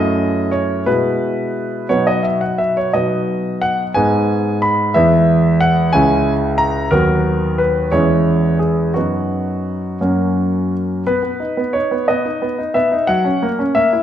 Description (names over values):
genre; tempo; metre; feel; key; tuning
classical-period piano sonatina; 59 BPM (dotted quarters); 6/8; rubato; B major; A4 = 441 Hz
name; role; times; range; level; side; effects
clear concert grand piano; solo; 0.0-14.0 s; C#2 to B5; -14 LUFS; equal; none
room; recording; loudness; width
wet recital hall reverb, RT60 1.5 s; dark, warm production; -14 LUFS; side -10 dB against mid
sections
0.0-11.1 A section; 11.1-14.0 B section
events
none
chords
0.0 F#m7; 0.9 E/B; 1.9 B; 4.0 G#m; 5.0 E; 5.9 C#m; 6.9 B/D#; 7.9 C#m/E; 9.0 B/F#; 10.0 F#; 11.1 B; 13.1 F#7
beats
| 0.87 1.90 | 2.93 3.95 | 4.95 5.93 | 6.91 7.93 | 8.96 10.02 | 11.07 12.09 | 13.10